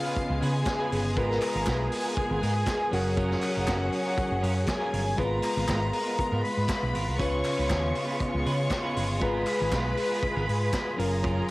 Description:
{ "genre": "disco", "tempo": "119 BPM", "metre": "4/4", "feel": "straight", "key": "G# dorian", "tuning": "A4 = 441 Hz", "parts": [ { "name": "warm studio string section", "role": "second line", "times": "0.0-11.5 s", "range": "E#4 to C#6", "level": "-32 LUFS", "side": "left 1 dB", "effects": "none" }, { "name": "electric guitar at the edge of break-up", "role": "accompaniment", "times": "0.0-11.5 s", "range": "B3 to B4", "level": "-38 LUFS", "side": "right 3 dB", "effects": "wide subtle chorus" }, { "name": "tine electric piano", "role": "accompaniment", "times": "0.0-11.5 s", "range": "C#3 to B4", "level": "-32 LUFS", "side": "left 1 dB", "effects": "medium stereo tremolo" }, { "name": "clear symphonic string section", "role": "sustained chords", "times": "0.0-11.5 s", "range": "C#3 to B4", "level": "-32 LUFS", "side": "equal", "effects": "none" }, { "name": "vintage drum kit", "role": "drums", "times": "0.2-11.5 s", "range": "hi-hat, kick drum, snare drum", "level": "-33 LUFS", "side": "equal", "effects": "none" }, { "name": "fingered electric bass", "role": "bass", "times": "0.3-11.4 s", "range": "F#1 to C#3", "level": "-29 LUFS", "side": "equal", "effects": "none" }, { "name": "group handclap", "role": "percussion", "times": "0.7-10.9 s", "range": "none", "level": "-40 LUFS", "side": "left 1 dB", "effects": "none" } ], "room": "light reverb, small room ambience", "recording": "home recording on cassette", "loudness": "-25 LUFS", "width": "side -20 dB against mid", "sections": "0.0-11.5 A section", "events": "none", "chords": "0.0 C#7; 1.2 G#m69; 2.9 F#maj7; 5.2 G#m69; 7.2 C#7; 9.2 G#m69; 11.0 F#maj7" }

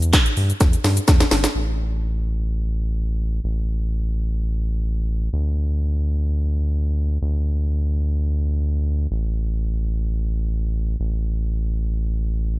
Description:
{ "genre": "dance-pop", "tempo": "free time", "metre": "none", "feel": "none", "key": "unclear", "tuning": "A4 = 440 Hz", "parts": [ { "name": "round analog bass", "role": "bass", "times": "0.0-12.6 s", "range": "G1 to G2", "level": "-20 LUFS", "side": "equal", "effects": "sidechain pumping" }, { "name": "house drum kit", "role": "drums", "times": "0.0-1.5 s", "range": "handclaps, hi-hat, kick drum, shaker, snare drum", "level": "-17 LUFS", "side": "equal", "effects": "none" } ], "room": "little or no reverb", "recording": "bright 1980s-style digital production", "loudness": "-19 LUFS", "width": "side -20 dB against mid", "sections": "0.0-1.6 A section; 1.6-12.6 B section", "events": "drop 0.0-1.6; drum fill 0.6-1.6", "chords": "none" }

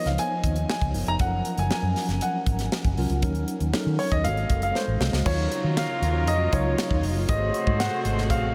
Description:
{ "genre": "polished 1980s jazz-funk pop", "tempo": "118 BPM", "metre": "4/4", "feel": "straight", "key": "unclear", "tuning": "A4 = 440 Hz", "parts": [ { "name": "warm grand piano", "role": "melody", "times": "0.0-8.5 s", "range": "C5 to Bb5", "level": "-31 LUFS", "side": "equal", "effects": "diffuse ambient delay" }, { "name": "mellow tine electric piano", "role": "accompaniment", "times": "0.0-8.5 s", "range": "F3 to Db5", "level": "-33 LUFS", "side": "equal", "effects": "subtle chorus" }, { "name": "vintage muted fingered electric bass", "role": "bass", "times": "0.1-8.5 s", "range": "F1 to Eb3", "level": "-28 LUFS", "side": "equal", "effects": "none" }, { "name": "tight funk drum kit", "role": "drums", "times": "0.1-8.4 s", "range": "crash cymbal, hi-hat, kick drum, snare drum", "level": "-31 LUFS", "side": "equal", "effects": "none" }, { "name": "warm horn section", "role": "second line", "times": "5.3-8.5 s", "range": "Gb3 to C5", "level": "-36 LUFS", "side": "equal", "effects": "none" }, { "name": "warm studio string section", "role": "sustained chords", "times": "5.3-8.5 s", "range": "C3 to Ab4", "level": "-35 LUFS", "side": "equal", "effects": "none" } ], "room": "moderate huge ambient reverb, RT60 7.8 s", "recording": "dreamy mix soaked in reverb", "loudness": "-25 LUFS", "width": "mono", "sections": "0.0-5.3 A section; 5.3-8.5 B section", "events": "drum fill 4.8-5.3", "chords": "0.0 Db13; 1.2 Gbmaj7; 3.2 Ebm7; 4.2 Ab7b9; 5.3 Ebm9; 7.3 Ab7b9" }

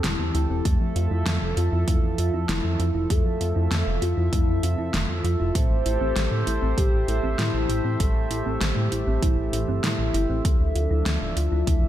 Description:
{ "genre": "synthwave", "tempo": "98 BPM", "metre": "4/4", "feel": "straight", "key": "A minor", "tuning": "A4 = 440 Hz", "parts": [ { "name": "soft octave-layered synth lead", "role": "melody", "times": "0.0-11.9 s", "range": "C4 to C5", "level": "-30 LUFS", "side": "left 1 dB", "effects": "chorus, phaser, tape echo" }, { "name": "chorused pulse-width pad", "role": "sustained chords", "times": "0.0-11.9 s", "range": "F3 to E5", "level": "-30 LUFS", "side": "right 1 dB", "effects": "sidechain pumping" }, { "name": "thumb-piano-like synth pluck", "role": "arpeggios", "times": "0.0-11.8 s", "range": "G3 to F4", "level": "-34 LUFS", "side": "right 3 dB", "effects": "chorus, ping-pong delay" }, { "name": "chorused synth bass", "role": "bass", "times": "0.0-11.9 s", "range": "D1 to A2", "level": "-25 LUFS", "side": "equal", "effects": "tube saturation" }, { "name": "pop drum kit", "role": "drums", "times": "0.0-11.8 s", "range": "hi-hat, snare drum", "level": "-30 LUFS", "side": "equal", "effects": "gated reverb" }, { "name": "electronic kick drum", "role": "drums", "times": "0.7-11.8 s", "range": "none", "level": "-22 LUFS", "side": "equal", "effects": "none" } ], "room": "light reverb", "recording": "none", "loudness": "-21 LUFS", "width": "side -12 dB against mid", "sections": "0.0-11.9 A section", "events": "none", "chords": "0.0 Am7/E; 0.7 Fmaj7; 5.6 Am7; 10.4 Dmadd9" }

